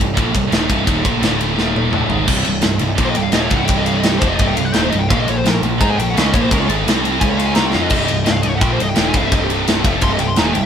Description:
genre	heavy metal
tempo	170 BPM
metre	4/4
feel	straight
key	C phrygian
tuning	A4 = 440 Hz
part	scooped high-gain guitar	riff	0.0-10.7 s	C2 to Ab4	-22 LUFS	left 4 dB	distortion
part	scooped high-gain guitar	riff	0.0-10.7 s	C2 to Ab4	-22 LUFS	right 8 dB	distortion
part	sludgy distorted guitar	riff	0.0-10.7 s	C2 to Ab4	-24 LUFS	equal	overdrive
part	growling picked electric bass	bass	0.0-10.7 s	C1 to Ab2	-21 LUFS	equal	overdrive
part	tight metal drum kit	drums	0.0-10.6 s	crash cymbal, kick drum, ride cymbal, snare drum, toms	-17 LUFS	equal	none
part	high-gain lead guitar	melody	3.1-10.7 s	F4 to C6	-22 LUFS	left 2 dB	distortion
room	moderate studio reverb, RT60 0.7 s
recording	band playing live in one room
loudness	-13 LUFS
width	side -8 dB against mid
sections	0.0-2.3 A section; 2.3-10.7 B section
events	drum fill 1.6-2.3, 7.7; lead electric guitar solo 2.3-10.7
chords	0.0 Cm; 1.2 D5; 1.6 Eb5; 1.9 D5; 2.3 Cm; 5.1 Bb5; 6.9 C5; 7.2 Db5; 7.6 Cmadd11; 7.9 Cm

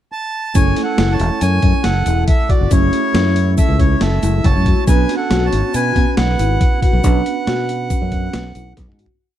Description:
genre	progressive instrumental, band music in an uneven meter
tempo	139 BPM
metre	5/4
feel	straight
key	F# minor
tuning	A4 = 439 Hz
part	accordion	melody	0.1-8.7 s	C#5 to A5	-22 LUFS	right 2 dB	tape echo
part	overdriven tine electric piano	accompaniment	0.5-9.2 s	G#3 to A4	-25 LUFS	right 5 dB	fast tremolo
part	egg shaker	percussion	0.5-8.9 s	none	-33 LUFS	left 6 dB	none
part	warm flugelhorn	second line	0.6-8.7 s	E4 to C#5	-28 LUFS	right 4 dB	tape echo
part	marimba with soft mallets	arpeggios	0.6-9.1 s	C#4 to F#4	-23 LUFS	left 4 dB	none
part	fingered electric bass	bass	0.6-9.1 s	E1 to B2	-17 LUFS	equal	none
part	boom bap sampler-style drum kit	drums	0.6-9.2 s	hi-hat, kick drum, snare drum, toms	-16 LUFS	equal	none
room	little or no reverb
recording	dark, warm production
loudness	-13 LUFS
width	side -11 dB against mid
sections	0.0-0.6 pickup bar; 0.6-9.2 groove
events	fade-out 7.0-9.2; drum fill 8.8-9.2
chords	0.0 N.C.; 0.6 F#m7; 4.9 Bmadd9

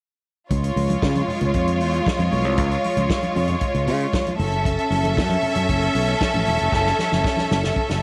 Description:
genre	disco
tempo	116 BPM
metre	4/4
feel	straight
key	unclear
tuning	A4 = 440 Hz
part	clear studio string section	second line	0.5-8.0 s	G#3 to E5	-24 LUFS	equal	none
part	fingered electric bass	bass	0.5-8.0 s	E1 to C#3	-25 LUFS	equal	none
part	vintage drum kit	drums	0.5-8.0 s	hi-hat, kick drum, snare drum	-29 LUFS	equal	none
part	congas	percussion	0.5-8.0 s	none	-32 LUFS	equal	none
room	light reverb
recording	none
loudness	-21 LUFS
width	mono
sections	0.5-8.0 A section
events	drum fill 6.7-8.0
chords	0.5 C#; 4.4 F#m7

